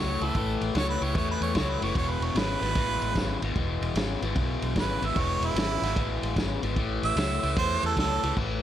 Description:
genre	electric blues shuffle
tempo	150 BPM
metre	4/4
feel	swing 66% on 8ths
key	A major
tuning	A4 = 440 Hz
part	warm harmonica	second line	0.0-8.4 s	E4 to E5	-30 LUFS	right 5 dB	plate reverb
part	raw garage guitar	riff	0.0-8.6 s	E2 to F#3	-30 LUFS	left 5 dB	overdrive
part	vintage muted fingered electric bass	bass	0.0-8.6 s	E1 to E2	-31 LUFS	equal	none
part	vintage drum kit	drums	0.2-8.5 s	crash cymbal, kick drum, ride cymbal, snare drum	-30 LUFS	right 1 dB	none
room	light reverb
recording	none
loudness	-25 LUFS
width	side -11 dB against mid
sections	0.0-8.4 A section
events	harmonica solo 0.0-8.6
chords	0.0 A; 2.0 E; 6.8 A

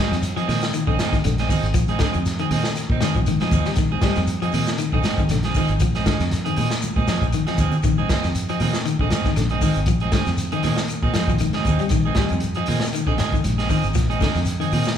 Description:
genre	afrobeat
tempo	118 BPM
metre	4/4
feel	swing 55% on 16ths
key	Bb mixolydian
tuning	A4 = 440 Hz
part	electric guitar at the edge of break-up	arpeggios	0.0-14.8 s	D3 to G3	-26 LUFS	left 5 dB	none
part	electric guitar at the edge of break-up	stabs	0.0-14.9 s	F3 to Ab4	-26 LUFS	right 5 dB	none
part	fingered electric bass	bass	0.1-15.0 s	Ab1 to Bb2	-24 LUFS	equal	none
part	crunchy breakbeat drum kit	drums	0.1-15.0 s	hi-hat, kick drum, snare drum	-24 LUFS	equal	none
part	claves	percussion	0.1-14.9 s	none	-43 LUFS	left 4 dB	none
part	shekere	percussion	0.1-15.0 s	none	-31 LUFS	left 2 dB	none
part	congas	percussion	0.2-14.9 s	none	-29 LUFS	right 1 dB	none
room	wet large studio reverb, RT60 1.3 s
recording	band playing live in one room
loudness	-18 LUFS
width	side -9 dB against mid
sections	0.0-15.0 A section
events	drum fill 6.8-7.8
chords	0.0 Bb9sus4

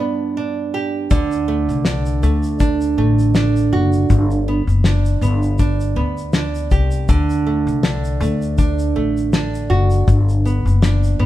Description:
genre	acoustic pop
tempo	80 BPM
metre	4/4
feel	swing 55% on 16ths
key	G major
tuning	A4 = 440 Hz
part	nylon-string guitar	accompaniment	0.0-11.3 s	G2 to G4	-20 LUFS	right 4 dB	none
part	upright bass	bass	1.1-11.3 s	F#1 to D2	-17 LUFS	left 1 dB	none
part	cloth-damped thuddy drum kit	drums	1.1-11.2 s	kick drum, shaker, snare drum	-18 LUFS	left 2 dB	none
room	light reverb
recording	band playing live in one room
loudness	-15 LUFS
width	side -14 dB against mid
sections	0.0-11.3 A section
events	none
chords	0.0 G; 1.1 D; 10.1 G

